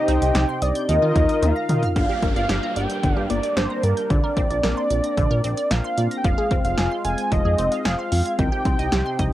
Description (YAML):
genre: synth-pop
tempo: 112 BPM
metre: 4/4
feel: straight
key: unclear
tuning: A4 = 439 Hz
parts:
  - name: wide unison lead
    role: melody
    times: 0.0-9.3 s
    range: Bb4 to Ab5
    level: -24 LUFS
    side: right 1 dB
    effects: cassette tape
  - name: mellow synth brass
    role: accompaniment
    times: 0.0-1.8 s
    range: Eb4 to Eb5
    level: -22 LUFS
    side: left 2 dB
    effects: chorus, cassette tape
  - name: warm analog pad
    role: sustained chords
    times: 0.0-9.3 s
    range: C3 to Bb4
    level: -29 LUFS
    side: left 1 dB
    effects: chorus, cassette tape
  - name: resonant blip pluck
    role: arpeggios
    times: 0.0-9.3 s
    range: D3 to Bb6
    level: -29 LUFS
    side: equal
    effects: phaser, cassette tape, analog delay
  - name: chorused synth bass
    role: bass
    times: 0.1-9.3 s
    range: F1 to Eb3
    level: -23 LUFS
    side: equal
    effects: none
  - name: punchy analog drum machine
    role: drums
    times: 0.1-9.3 s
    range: hi-hat, kick drum, snare drum, toms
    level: -24 LUFS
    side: equal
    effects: overdrive, cassette tape
  - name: downlifter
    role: sound effects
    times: 2.0-6.2 s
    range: none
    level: -36 LUFS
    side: left 1 dB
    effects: none
room: light reverb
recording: home recording on cassette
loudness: -19 LUFS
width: side -14 dB against mid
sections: 0.0-2.0 A section; 2.0-9.3 B section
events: drum fill 1.4-2.0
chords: 0.0 Cm; 0.9 Ebsus2; 2.0 Gm; 4.1 Bbadd9; 6.2 Fm; 8.4 Cm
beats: 0.35 0.89 1.42 | 1.96 2.50 3.03 3.57 | 4.10 4.64 5.17 5.71 | 6.25 6.78 7.32 7.85 | 8.39 8.92